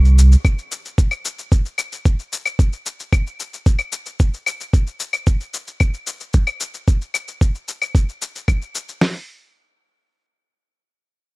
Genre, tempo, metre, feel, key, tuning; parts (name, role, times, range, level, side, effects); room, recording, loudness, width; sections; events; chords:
sunset chillout; 112 BPM; 4/4; straight
cabasa and claves; drums; 0.1-9.0 s; -25 LUFS; left 5 dB; overdrive
dusty soul sampler-style drum kit; drums; 0.4-9.1 s; hi-hat, kick drum, snare drum; -15 LUFS; equal; overdrive
digital ambience; -17 LUFS; side -23 dB against mid
0.0-9.0 A section; 9.0-11.4 B section